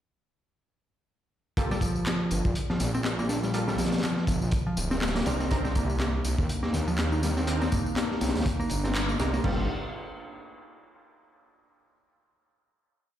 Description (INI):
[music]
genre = breakbeat, breaks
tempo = 122 BPM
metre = 4/4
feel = swing 57% on 16ths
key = G minor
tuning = A4 = 440 Hz
[part]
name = orchestra-hit-like synth stab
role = stabs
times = 1.6-9.6 s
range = Bb3 to Bb4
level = -36 LUFS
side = right 2 dB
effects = built-in reverb, dub echo
[part]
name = crunchy breakbeat drum kit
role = drums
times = 1.6-9.6 s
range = crash cymbal, hi-hat, kick drum, snare drum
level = -30 LUFS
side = equal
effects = none
[part]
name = electronic tambourine and handclaps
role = drums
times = 1.6-9.4 s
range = none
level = -37 LUFS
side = equal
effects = none
[part]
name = picked electric bass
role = riff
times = 1.7-9.7 s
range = F3 to Eb4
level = -31 LUFS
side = equal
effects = dub echo
[part]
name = detuned saw bass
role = bass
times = 2.3-9.7 s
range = D1 to Eb2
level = -29 LUFS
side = equal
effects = none
[part]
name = warbly tape-like pad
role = sustained chords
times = 6.2-9.7 s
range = Bb3 to Eb4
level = -35 LUFS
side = left 2 dB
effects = chorus, built-in reverb, phaser, vintage 12-bit sampler grit, sidechain pumping
[sound]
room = light reverb, small room ambience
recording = played on a big sound system in a bare room, large studio reverb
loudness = -25 LUFS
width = side -11 dB against mid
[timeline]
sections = 1.6-9.4 drop; 9.4-11.4 final chord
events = drop 1.6-9.4; band accent 9.0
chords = 1.6 Gm9; 5.3 Cm9; 9.4 Gm9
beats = | 1.57 2.07 2.56 3.05 | 3.54 4.03 4.53 5.02 | 5.51 6.00 6.49 6.98 | 7.48 7.97 8.46 8.95 | 9.44